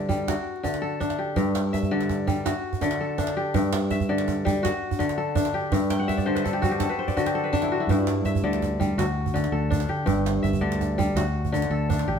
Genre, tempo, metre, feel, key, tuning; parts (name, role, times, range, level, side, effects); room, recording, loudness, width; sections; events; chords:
west african traditional, West African string and xylophone music; 110 BPM (dotted quarters); 12/8; straight; G major; A4 = 440 Hz
kora; arpeggios; 0.0-12.2 s; G2 to G5; -24 LUFS; left 1 dB
djembe; percussion; 0.1-12.1 s; -28 LUFS; right 4 dB
fingered electric bass; bass; 7.9-12.2 s; G1 to D3; -27 LUFS; equal
moderate stone room reverb, RT60 1.1 s; band playing live in one room; -22 LUFS; side -7 dB against mid
0.0-12.2 A section
kora fill 5.9-7.9
0.3 D; 1.4 G5; 2.5 D; 3.5 G5; 4.6 D; 5.7 G5; 6.8 N.C.; 7.9 G5; 9.0 D; 10.1 G5; 11.2 D